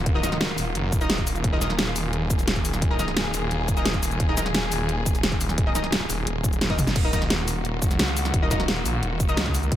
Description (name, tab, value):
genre	dark technical drum and bass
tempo	174 BPM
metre	4/4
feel	straight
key	Eb minor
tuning	A4 = 440 Hz
part	warm studio string section	sustained chords	0.0-9.8 s	Eb3 to Bb4	-31 LUFS	left 1 dB	sidechain pumping
part	snarling distorted saw bass	bass	0.0-9.8 s	Eb1 to Db2	-27 LUFS	equal	distortion, tube saturation
part	orchestra-hit-like synth stab	stabs	0.1-9.8 s	Eb4 to Eb5	-31 LUFS	left 1 dB	built-in reverb, tape echo
part	dubstep drum kit	drums	0.1-9.8 s	cabasa, crash cymbal, hi-hat, snare drum, toms	-26 LUFS	equal	none
part	electronic kick drum	drums	0.1-9.8 s	none	-24 LUFS	equal	none
room	little or no reverb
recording	none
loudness	-21 LUFS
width	side -12 dB against mid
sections	0.0-7.0 A section; 7.0-9.8 A section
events	drop 0.0-7.0, 7.0-9.8; drum fill 6.7; band accent 6.9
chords	0.0 Ebmadd9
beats	| 0.06 0.41 0.75 1.10 | 1.44 1.79 2.13 2.48 | 2.82 3.17 3.51 3.85 | 4.20 4.54 4.89 5.24 | 5.58 5.92 6.27 6.61 | 6.96 7.30 7.65 7.99 | 8.34 8.68 9.03 9.37 | 9.72